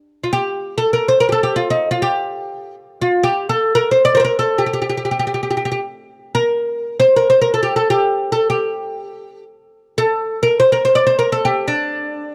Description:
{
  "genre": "Arabic maqam ensemble",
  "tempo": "free time",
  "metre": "none",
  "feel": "none",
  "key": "unclear",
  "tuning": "A4 = 443 Hz",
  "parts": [
    { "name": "oud", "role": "solo", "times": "0.2-12.3 s", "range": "D4 to D5", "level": "-17 LUFS", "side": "equal", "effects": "none" }
  ],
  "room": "studio reverb",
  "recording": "dry, close 1970s-style studio recording",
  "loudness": "-17 LUFS",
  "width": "mono",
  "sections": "0.1-12.3 A section",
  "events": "none",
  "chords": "none"
}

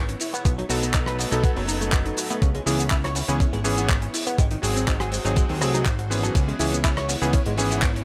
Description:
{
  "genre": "nu-disco, nu disco",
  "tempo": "122 BPM",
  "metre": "4/4",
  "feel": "straight",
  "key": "C# minor",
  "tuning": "A4 = 439 Hz",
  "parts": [
    { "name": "string machine, full ensemble", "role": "sustained chords", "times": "0.0-8.0 s", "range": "A3 to C#5", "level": "-37 LUFS", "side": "equal", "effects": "ensemble chorus, sidechain pumping" },
    { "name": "fat analog bass", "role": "bass", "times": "0.0-8.0 s", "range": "F#1 to D#2", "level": "-29 LUFS", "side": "equal", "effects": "tube saturation" },
    { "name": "analog pluck", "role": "arpeggios", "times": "0.1-8.0 s", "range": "B3 to B#4", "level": "-35 LUFS", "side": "equal", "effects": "chorus, phaser, sidechain pumping, tape echo" },
    { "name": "damped 70s drum kit", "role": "drums", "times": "0.1-8.0 s", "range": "handclaps, hi-hat, ride cymbal, rim click, shaker", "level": "-30 LUFS", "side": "equal", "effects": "none" },
    { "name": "direct-recorded clean electric guitar", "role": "riff", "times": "0.3-7.8 s", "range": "D#3 to C#5", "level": "-35 LUFS", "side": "equal", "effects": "lush chorus, tape echo" },
    { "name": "electronic kick drum", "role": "drums", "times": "0.5-7.9 s", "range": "none", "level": "-24 LUFS", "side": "equal", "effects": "none" },
    { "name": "bright electric grand piano", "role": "accompaniment", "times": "0.7-7.8 s", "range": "E3 to A4", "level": "-31 LUFS", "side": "equal", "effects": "sidechain pumping, tape echo" }
  ],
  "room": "little or no reverb",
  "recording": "none",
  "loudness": "-23 LUFS",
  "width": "mono",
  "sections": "0.0-8.0 A section",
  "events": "none",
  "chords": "0.5 B7; 2.4 C#m7; 4.4 G#7b9; 6.4 C#m7"
}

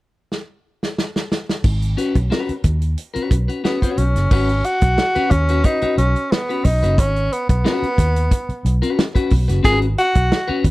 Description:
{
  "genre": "funk",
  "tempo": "90 BPM",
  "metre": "4/4",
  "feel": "straight",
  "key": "G# minor",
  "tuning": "A4 = 441 Hz",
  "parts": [
    { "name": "warm soul drum kit", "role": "drums", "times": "0.3-10.7 s", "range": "crash cymbal, hi-hat, kick drum, snare drum", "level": "-18 LUFS", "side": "equal", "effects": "none" },
    { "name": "vintage muted fingered electric bass", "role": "bass", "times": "1.6-10.7 s", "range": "F#1 to D#2", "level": "-18 LUFS", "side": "equal", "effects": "none" },
    { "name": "clean electric guitar", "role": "accompaniment", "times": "2.0-10.7 s", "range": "C#4 to C#5", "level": "-23 LUFS", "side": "left 4 dB", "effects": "spring reverb" },
    { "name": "breathy tenor saxophone", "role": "melody", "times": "3.7-10.6 s", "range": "B3 to G#4", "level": "-20 LUFS", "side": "equal", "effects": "none" }
  ],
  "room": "studio reverb",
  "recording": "none",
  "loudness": "-16 LUFS",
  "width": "side -19 dB against mid",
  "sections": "0.0-1.6 A section; 1.6-4.3 B section; 4.3-10.7 C section",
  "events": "drum fill 0.3-1.6",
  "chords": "0.0 N.C.; 1.6 G#m7 (rootless); 4.3 G#m7"
}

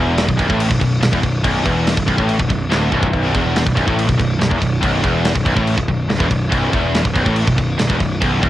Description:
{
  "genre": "heavy metal",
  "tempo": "142 BPM",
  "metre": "4/4",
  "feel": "straight",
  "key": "B minor",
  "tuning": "A4 = 440 Hz",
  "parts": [
    { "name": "distorted electric guitar", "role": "riff", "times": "0.0-8.5 s", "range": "B1 to A2", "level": "-23 LUFS", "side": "left 6 dB", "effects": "overdrive" },
    { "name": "high-gain distorted guitar", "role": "riff", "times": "0.0-8.5 s", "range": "B1 to A2", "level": "-24 LUFS", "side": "right 5 dB", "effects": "distortion" },
    { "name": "tight distorted guitar", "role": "riff", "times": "0.0-8.5 s", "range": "B1 to A2", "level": "-21 LUFS", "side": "equal", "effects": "distortion" },
    { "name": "fuzz picked electric bass", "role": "bass", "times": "0.0-8.5 s", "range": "B0 to A1", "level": "-20 LUFS", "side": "equal", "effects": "overdrive" },
    { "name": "tight metal drum kit", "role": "drums", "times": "0.2-8.5 s", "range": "crash cymbal, kick drum, snare drum", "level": "-20 LUFS", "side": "equal", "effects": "cassette tape" }
  ],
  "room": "little or no reverb",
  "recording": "home recording on cassette",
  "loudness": "-14 LUFS",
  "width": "side -14 dB against mid",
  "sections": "0.0-8.5 A section",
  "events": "drum fill 2.9",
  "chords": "none"
}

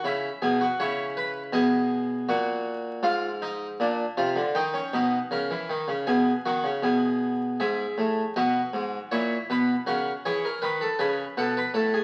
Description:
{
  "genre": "classical, baroque-style 3-part fugue for harpsichord",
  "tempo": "79 BPM",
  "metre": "4/4",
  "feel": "straight",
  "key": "E major from 7.6 s",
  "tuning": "A4 = 440 Hz",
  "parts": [
    { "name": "harpsichord", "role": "solo", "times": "0.0-12.0 s", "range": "G#2 to G#5", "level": "-26 LUFS", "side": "equal", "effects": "none" }
  ],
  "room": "wet stone room reverb, RT60 1.0 s",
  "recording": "very old 78 rpm record, vinyl crackle",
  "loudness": "-26 LUFS",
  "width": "mono",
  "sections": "0.0-7.6 A section; 7.6-12.0 B section",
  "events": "none",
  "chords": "0.0 C#m; 1.5 G#m/B; 3.0 A#7/G#; 4.5 D#7; 6.1 G#m/B; 7.6 E/G#; 9.1 F#7/A#; 10.6 B7"
}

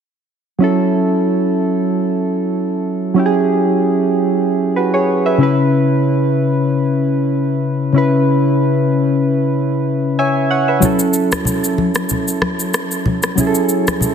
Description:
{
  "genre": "afrobeats",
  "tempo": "94 BPM",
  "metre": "4/4",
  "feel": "swing 55% on 16ths",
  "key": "F# minor",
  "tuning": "A4 = 438 Hz",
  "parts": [
    { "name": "soft electric-piano-like synth keys", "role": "accompaniment", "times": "0.6-14.1 s", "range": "C#3 to G#5", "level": "-14 LUFS", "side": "equal", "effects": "chorus" },
    { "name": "electronic shaker and rim click", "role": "drums", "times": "10.8-14.1 s", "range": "none", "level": "-20 LUFS", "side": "left 1 dB", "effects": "soft clipping on snare" },
    { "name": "congas", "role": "percussion", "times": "10.8-14.1 s", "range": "none", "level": "-20 LUFS", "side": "left 1 dB", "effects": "none" }
  ],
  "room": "moderate lush hall reverb, RT60 2.0 s",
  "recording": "dense, heavily limited modern master",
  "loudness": "-13 LUFS",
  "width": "side -7 dB against mid",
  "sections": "0.6-14.1 A section",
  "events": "synth keys fill 9.9-10.8",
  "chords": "0.6 F#m7; 5.4 C#m7; 10.8 F#m7"
}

